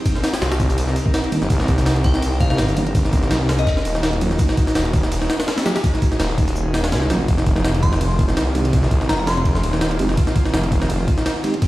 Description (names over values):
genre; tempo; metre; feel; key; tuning
drum and bass, jungle; 166 BPM; 4/4; swing 54% on 16ths; F minor; A4 = 440 Hz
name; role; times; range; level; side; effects
airy breathy pad; sustained chords; 0.0-11.7 s; Eb3 to Bb4; -27 LUFS; equal; chorus, vintage 12-bit sampler grit
crunchy breakbeat drum kit; drums; 0.1-7.2 s; hi-hat, shaker, snare drum; -35 LUFS; left 1 dB; high-pass filter on hats, high-pass filter on snare, high-pass filter on perc, high-pass filter on room
jungle sampler-style drum kit; drums; 0.1-11.7 s; hi-hat, kick drum, ride cymbal, snare drum; -19 LUFS; equal; none
detuned saw bass; bass; 0.4-11.1 s; Eb1 to Db2; -20 LUFS; equal; tube saturation
mellow tonewheel organ; stabs; 1.3-11.5 s; Eb3 to G4; -27 LUFS; right 2 dB; none
glassy synth bell; melody; 2.0-3.7, 7.8-9.6 s; Eb5 to C6; -29 LUFS; left 2 dB; chorus, phaser, dub echo
room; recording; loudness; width
light reverb; played on a big sound system in a bare room, stone room reverb, vinyl crackle; -16 LUFS; side -17 dB against mid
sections
0.0-7.3 A section; 7.3-11.7 A section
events
drop 0.0-7.3, 7.3-11.7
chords
0.1 Cm7; 3.7 Ebm7; 7.3 Fm7